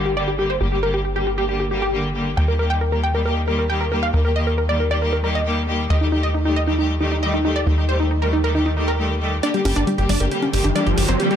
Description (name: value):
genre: uplifting trance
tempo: 136 BPM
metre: 4/4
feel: straight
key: G minor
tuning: A4 = 440 Hz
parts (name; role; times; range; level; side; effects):
- clear studio string section; sustained chords; 0.0-11.4 s; D3 to G4; -24 LUFS; left 1 dB; low-pass filter
- tight sequencer bass; bass; 0.0-11.2 s; G1 to Eb2; -21 LUFS; equal; none
- wide unison pluck; melody; 0.1-11.4 s; C4 to G5; -22 LUFS; equal; ping-pong delay
- electronic hi-hat and congas; drums; 9.4-11.4 s; none; -27 LUFS; equal; overdrive, high-pass filter on hats, high-pass filter on perc, high-pass filter on room
- riser; sound effects; 10.1-11.4 s; none; -25 LUFS; right 2 dB; none
- wide unison pluck; arpeggios; 9.5-11.4 s; G3 to Bb4; -26 LUFS; left 2 dB; ping-pong delay
room: little or no reverb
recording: none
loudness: -18 LUFS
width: side -9 dB against mid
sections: 0.0-9.4 A section; 9.4-11.4 B section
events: build-up 9.4-11.4; filter sweep on synth arpeggio sound 9.4-11.4; riser 10.1-11.4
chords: 0.0 Gm; 2.4 Eb; 9.4 Gm